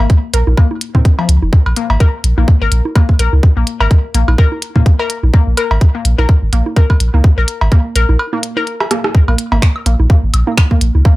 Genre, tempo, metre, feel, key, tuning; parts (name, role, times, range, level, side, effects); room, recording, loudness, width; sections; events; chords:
minimal techno; 126 BPM; 4/4; swing 57% on 16ths; Bb minor; A4 = 439 Hz
resonant blip pluck; riff; 0.0-11.1 s; F3 to Bb4; -20 LUFS; left 2 dB; chorus, sidechain pumping, dub echo
punchy sub bass; bass; 0.0-11.0 s; F1 to Bb2; -12 LUFS; equal; sidechain pumping
cowbell, congas and woodblock; percussion; 0.0-11.0 s; -22 LUFS; right 2 dB; overdrive, tape echo
electronic kick drum; drums; 0.1-11.2 s; -8 LUFS; equal; overdrive
minimal click drum kit; drums; 0.1-10.9 s; finger snaps, hi-hat, rim click; -18 LUFS; equal; overdrive
little or no reverb; -10 LUFS; side -19 dB against mid
0.0-11.2 A section
break 8.2-9.1; drum fill 8.8-9.1